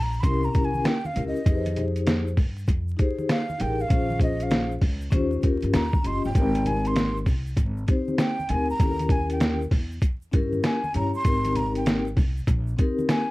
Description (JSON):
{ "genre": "hip hop, jazz-hop", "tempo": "98 BPM", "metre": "4/4", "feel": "swing 65% on 16ths", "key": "Ab major", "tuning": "A4 = 441 Hz", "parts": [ { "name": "breathy mellow silver concert flute", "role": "melody", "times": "0.0-13.3 s", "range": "Eb5 to C6", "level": "-30 LUFS", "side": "right 1 dB", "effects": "none" }, { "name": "upright bass", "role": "bass", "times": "0.0-12.7 s", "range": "Gb1 to G2", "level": "-28 LUFS", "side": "equal", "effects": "none" }, { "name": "egg shaker and congas", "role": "percussion", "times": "0.1-13.3 s", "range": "none", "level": "-36 LUFS", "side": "right 1 dB", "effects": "none" }, { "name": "vibraphone with soft mallets", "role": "accompaniment", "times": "0.2-13.2 s", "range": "C4 to Eb5", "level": "-27 LUFS", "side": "left 3 dB", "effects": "none" }, { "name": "lo-fi sampler-style drum kit", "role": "drums", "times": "0.2-13.3 s", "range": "hi-hat, kick drum, snare drum", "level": "-23 LUFS", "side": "equal", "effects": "overdrive, vintage 12-bit sampler grit" } ], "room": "light reverb", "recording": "dark, warm production, vinyl crackle", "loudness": "-22 LUFS", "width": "side -19 dB against mid", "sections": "0.0-13.3 A section", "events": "flute solo 0.0-13.3", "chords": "0.2 C7b9; 1.5 Fm9; 3.9 Bbm9; 5.1 Eb13; 6.4 Abmaj7; 8.8 Eb7b9; 11.3 Abmaj9" }